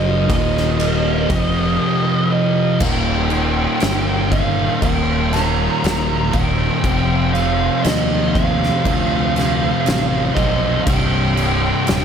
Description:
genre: stoner and doom metal.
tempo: 60 BPM.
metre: 4/4.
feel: straight.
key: unclear.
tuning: A4 = 435 Hz.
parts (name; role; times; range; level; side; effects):
fuzz lead guitar; melody; 0.0-12.0 s; Eb5 to Bb5; -22 LUFS; right 3 dB; distortion, analog delay.
tonewheel organ; sustained chords; 0.0-12.0 s; C3 to Ab4; -34 LUFS; right 1 dB; none.
sludgy distorted guitar; riff; 0.0-12.0 s; C2 to F#3; -25 LUFS; equal; overdrive.
thick fuzz guitar; riff; 0.0-12.0 s; C2 to F#3; -23 LUFS; left 9 dB; distortion.
thick fuzz guitar; riff; 0.0-12.0 s; C2 to F#3; -23 LUFS; right 8 dB; distortion.
picked electric bass; bass; 0.0-12.0 s; C1 to Eb2; -22 LUFS; equal; overdrive.
oversized low-tuned drum kit; drums; 0.3-12.0 s; crash cymbal, kick drum, ride cymbal, snare drum; -21 LUFS; equal; none.
room: light reverb, small room ambience.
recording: none.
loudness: -15 LUFS.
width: side -7 dB against mid.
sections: 0.0-2.8 A section; 2.8-12.0 B section.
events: lead electric guitar solo 0.0-2.8.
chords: 0.3 Eb5; 1.3 F5; 2.8 Eb; 6.8 F5; 10.8 Cm.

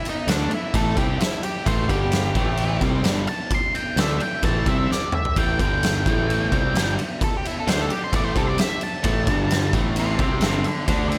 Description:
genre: blues rock power trio and southern rock.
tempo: 130 BPM.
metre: 4/4.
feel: straight.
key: A minor.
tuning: A4 = 440 Hz.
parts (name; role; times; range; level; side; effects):
octave-fuzz lead guitar; melody; 0.0-11.2 s; D4 to C6; -29 LUFS; equal; distortion.
oversized low-tuned drum kit; drums; 0.1-11.2 s; kick drum, ride cymbal, snare drum, toms; -26 LUFS; equal; none.
crunchy overdriven guitar; riff; 0.3-11.2 s; G2 to D4; -28 LUFS; equal; none.
overdriven picked electric bass; bass; 0.3-11.2 s; G1 to D2; -28 LUFS; equal; none.
room: moderate lush hall reverb, RT60 1.6 s, studio ambience.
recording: big arena sound.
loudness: -22 LUFS.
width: mono.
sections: 0.0-11.2 A section.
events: lead electric guitar solo 0.0-11.2; drum fill 4.9-5.4.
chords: 0.0 Am; 1.9 G5; 2.4 Am; 5.6 G5; 6.1 Am; 9.3 G5; 9.7 Am.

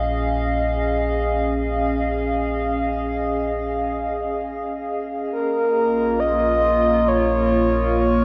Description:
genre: ambient.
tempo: free time.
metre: none.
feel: none.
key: Bb minor.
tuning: A4 = 439 Hz.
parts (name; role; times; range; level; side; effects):
warbly tape-like pad; sustained chords; 0.0-8.2 s; Bb3 to F5; -24 LUFS; equal; chorus, built-in reverb, shimmer reverb.
deep rumbling drone; bass; 0.0-8.2 s; Bb1; -29 LUFS; equal; built-in reverb.
analog drone; drone; 0.0-5.4 s; none; barely audible; none; none.
breathy flute-like synth lead; melody; 5.3-8.2 s; Bb4 to Eb5; -21 LUFS; equal; chorus, tremolo, shimmer reverb, diffuse ambient delay.
room: wet cathedral reverb, RT60 5.8 s.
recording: worn, warbling old tape, cassette tape, warbly pitch drift, nothing above 10.9 kHz.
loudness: -21 LUFS.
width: mono.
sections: 0.0-5.3 A section; 5.3-8.2 B section.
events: none.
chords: 0.0 Bbm11; 5.3 Bbm.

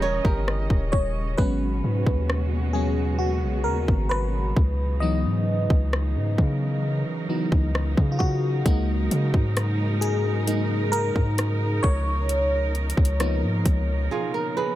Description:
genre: contemporary R&B.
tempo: 66 BPM.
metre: 4/4.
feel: straight.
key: unclear.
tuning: A4 = 441 Hz.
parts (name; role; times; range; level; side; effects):
FM electric piano; accompaniment; 0.0-14.8 s; E3 to D#5; -27 LUFS; left 1 dB; chorus, phaser.
warm symphonic string section; sustained chords; 0.0-14.8 s; B2 to D#5; -32 LUFS; right 3 dB; sidechain pumping.
flamenco guitar; arpeggios; 0.0-1.3, 14.1-14.8 s; E#4 to C#5; -27 LUFS; right 4 dB; tape echo.
long sustained 808-style bass; bass; 0.0-14.1 s; D#1 to C#3; -24 LUFS; equal; none.
trap drum kit; drums; 0.2-13.9 s; hi-hat, kick drum, rim click; -22 LUFS; equal; none.
room: little or no reverb.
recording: none.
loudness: -21 LUFS.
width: side -14 dB against mid.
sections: 0.0-14.8 A section.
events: FM electric piano solo 0.0-14.8; break 14.1-14.8.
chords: 0.0 D#7b9; 1.4 G#m11; 4.6 C#m11; 8.7 F#69/C#; 11.8 C#13.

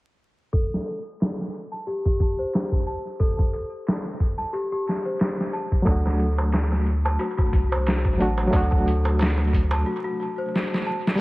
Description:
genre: trip hop.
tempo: 90 BPM.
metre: 4/4.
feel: swing 56% on 16ths.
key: A dorian.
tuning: A4 = 440 Hz.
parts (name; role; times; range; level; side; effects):
worn celesta; arpeggios; 0.5-11.2 s; F#4 to A5; -29 LUFS; left 1 dB; vintage 12-bit sampler grit, low-pass filter, tape echo.
trip hop sampler-style drum kit; drums; 0.5-11.2 s; hi-hat, kick drum, snare drum; -24 LUFS; equal; low-pass filter on hats, low-pass filter on kick, low-pass filter on snare, low-pass filter on room, tape echo.
barky reed electric piano; accompaniment; 5.8-11.2 s; F#3 to F#4; -26 LUFS; equal; fast tremolo, low-pass filter, tape echo.
round analog bass; bass; 5.9-9.8 s; A1 to D2; -22 LUFS; equal; none.
darbuka; percussion; 5.9-9.8 s; none; -33 LUFS; right 2 dB; tape echo.
room: light reverb, studio reverb.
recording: echo-heavy mix, vinyl crackle, low-pass filter.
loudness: -21 LUFS.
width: side -20 dB against mid.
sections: 0.5-11.2 A section.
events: filter sweep on celesta 0.5-11.2; filter sweep 0.5-11.2; break 9.9-11.2; drum fill 10.5-11.2.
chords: 0.5 Am7; 5.9 D.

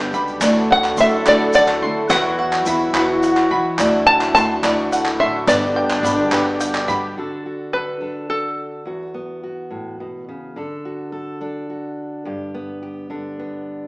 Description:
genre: indie folk with a building arrangement.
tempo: 71 BPM (dotted quarters).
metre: 6/8.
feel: straight.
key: D major.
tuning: A4 = 442 Hz.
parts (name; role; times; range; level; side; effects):
open-back banjo; melody; 0.0-10.2 s; A4 to A5; -16 LUFS; equal; none.
warm French horn; second line; 0.0-6.8 s; D4 to A4; -24 LUFS; equal; none.
picked steel-string acoustic guitar; accompaniment; 0.0-7.2 s; G2 to G4; -23 LUFS; left 1 dB; none.
pedal harmonium; sustained chords; 0.0-7.1 s; B2 to G4; -26 LUFS; equal; none.
bluegrass banjo; arpeggios; 0.0-7.2 s; B4 to C6; -22 LUFS; equal; none.
upright bass; bass; 0.0-7.2 s; G1 to E3; -25 LUFS; equal; none.
tube shaker; percussion; 0.1-7.0 s; none; -34 LUFS; left 1 dB; none.
group handclap; percussion; 0.4-7.0 s; none; -25 LUFS; right 1 dB; none.
fingerpicked steel-string acoustic guitar; accompaniment; 7.2-13.9 s; E2 to A4; -28 LUFS; equal; none.
room: wet large studio reverb, RT60 1.2 s.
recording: band playing live in one room, small speaker sound.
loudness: -15 LUFS.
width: side -24 dB against mid.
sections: 0.0-7.2 A section; 7.2-13.9 B section.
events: none.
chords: 0.4 Dadd9; 2.1 Esus2; 3.8 Dadd9; 5.5 G; 7.2 D; 8.9 Esus2; 10.6 D; 12.3 G.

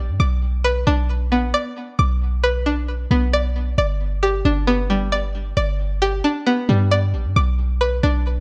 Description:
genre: hip hop, trap.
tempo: 134 BPM.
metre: 4/4.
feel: half-time.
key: B minor.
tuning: A4 = 440 Hz.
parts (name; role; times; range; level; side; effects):
string-like resonator pluck; arpeggios; 0.0-8.4 s; G3 to D6; -23 LUFS; equal; chorus, low-pass filter, digital delay.
clean 808-style bass; bass; 0.0-8.4 s; G1 to G2; -22 LUFS; equal; none.
room: light reverb.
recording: none.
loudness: -20 LUFS.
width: mono.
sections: 0.0-7.4 A section; 7.4-8.4 B section.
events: none.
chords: 0.2 Bm; 3.8 G; 7.4 Bm.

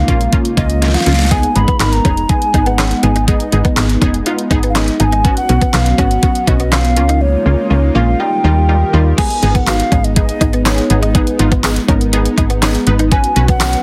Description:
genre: dance-pop.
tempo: 122 BPM.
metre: 4/4.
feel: straight.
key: G# dorian.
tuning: A4 = 441 Hz.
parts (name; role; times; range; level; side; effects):
mellow hollow alto ocarina; melody; 0.0-13.8 s; B4 to B5; -21 LUFS; equal; none.
airy breathy pad; sustained chords; 0.0-13.8 s; C#3 to A#4; -25 LUFS; equal; chorus, sidechain pumping.
solid FM bass; bass; 0.0-13.8 s; E#1 to D#2; -17 LUFS; equal; sidechain pumping.
unison pluck; accompaniment; 0.1-13.8 s; G3 to B4; -21 LUFS; equal; lush chorus, sidechain pumping.
pop drum kit; drums; 0.1-13.8 s; crash cymbal, handclaps, hi-hat, kick drum, snare drum; -18 LUFS; equal; overdrive.
direct-recorded clean electric guitar; riff; 1.3-13.6 s; G#3 to D#4; -24 LUFS; equal; ensemble chorus.
tambourine; percussion; 9.7-13.7 s; none; -31 LUFS; equal; none.
room: light reverb.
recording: heavily compressed radio sound, multiband compression.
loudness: -13 LUFS.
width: mono.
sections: 0.0-9.2 A section; 9.2-13.8 B section.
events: drum fill 0.8-1.3; silent gap 7.2-9.2.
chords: 0.0 C#6; 1.3 G#m; 5.2 Bsus2; 7.0 C#6; 8.2 D#add9; 9.2 G#m; 13.1 Bsus2.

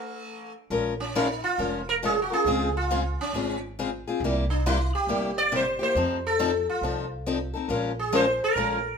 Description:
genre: acoustic string swing (jazz manouche).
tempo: 138 BPM.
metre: 4/4.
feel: swing 64% on 8ths.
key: Bb minor.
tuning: A4 = 440 Hz.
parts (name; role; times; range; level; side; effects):
sitar; melody; 0.0-9.0 s; A3 to D5; -26 LUFS; right 1 dB; none.
picked steel-string acoustic guitar; accompaniment; 0.7-8.8 s; C3 to Bb4; -27 LUFS; left 4 dB; none.
upright bass; bass; 0.7-8.9 s; F1 to F2; -32 LUFS; right 1 dB; none.
room: moderate studio reverb, RT60 0.6 s.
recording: minimal, uncompressed stereo recording.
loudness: -23 LUFS.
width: side -6 dB against mid.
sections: 0.7-9.0 A section.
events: stop 0.0-0.7.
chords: 0.0 N.C.; 0.7 Bbm7; 2.5 Dbmaj7; 4.2 C7; 5.9 F7; 7.7 Bbm7.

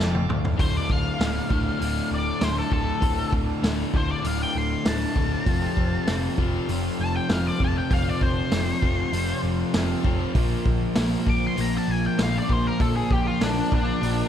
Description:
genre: classic rock.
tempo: 98 BPM.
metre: 4/4.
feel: straight.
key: D minor.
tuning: A4 = 441 Hz.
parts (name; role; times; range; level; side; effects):
bright tonewheel organ; sustained chords; 0.0-14.3 s; C4 to F5; -40 LUFS; right 1 dB; overdrive, slow rotary speaker.
crunchy overdriven guitar; riff; 0.0-14.3 s; D2 to Bb3; -30 LUFS; right 10 dB; none.
overdriven semi-hollow guitar; riff; 0.0-14.3 s; D2 to Bb3; -28 LUFS; left 9 dB; slapback echo.
hollow-body short-scale picked electric bass; bass; 0.0-14.2 s; D1 to Bb1; -28 LUFS; equal; none.
vintage drum kit; drums; 0.1-14.2 s; hi-hat, kick drum, snare drum, toms; -26 LUFS; equal; none.
octave-fuzz lead guitar; melody; 0.6-14.3 s; D4 to D6; -29 LUFS; left 2 dB; wah, distortion.
room: light reverb, small room ambience.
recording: none.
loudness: -21 LUFS.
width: side -9 dB against mid.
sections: 0.6-14.3 A section.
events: drum fill 0.0-0.6; lead electric guitar solo 0.6-14.3.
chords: 0.0 Dm; 5.5 F; 10.4 Bbadd9.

